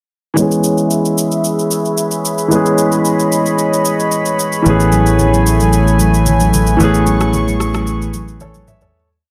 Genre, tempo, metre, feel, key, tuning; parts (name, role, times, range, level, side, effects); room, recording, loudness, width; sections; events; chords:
amapiano; 112 BPM; 4/4; straight; E major; A4 = 439 Hz
clear grand piano; accompaniment; 0.3-9.1 s; E3 to E5; -17 LUFS; equal; low-pass filter
warm analog pad; sustained chords; 0.4-8.9 s; A3 to C#6; -20 LUFS; equal; chorus, low-pass filter
smooth R&B drum kit; drums; 0.4-8.9 s; rim click, shaker, toms; -25 LUFS; equal
fingered electric bass; bass; 4.7-8.9 s; A1; -16 LUFS; equal
congas; percussion; 4.7-8.8 s; -24 LUFS; equal
light reverb, digital ambience; -14 LUFS; mono
0.4-8.9 breakdown
filter sweep 0.4-8.9; fade-out 6.8-8.9; drum fill 8.4-8.9
0.4 E6; 4.7 Amaj9